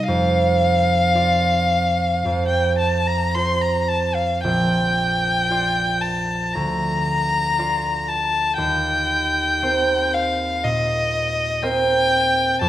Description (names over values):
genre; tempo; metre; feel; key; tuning
classical, romantic duo for violin and harp; 54-63 BPM; 4/4; rubato; unclear; A4 = 440 Hz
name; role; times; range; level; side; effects
rich violin; melody; 0.0-12.7 s; Eb5 to C6; -20 LUFS; left 2 dB; none
concert harp; accompaniment; 0.0-12.7 s; Bb1 to D5; -21 LUFS; right 2 dB; none
room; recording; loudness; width
wet recital hall reverb, RT60 1.3 s; none; -17 LUFS; side -13 dB against mid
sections
0.0-12.7 A section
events
none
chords
0.1 Dm/F; 2.2 F5; 4.4 Bb; 6.5 Bb/D; 8.6 Cm7/Eb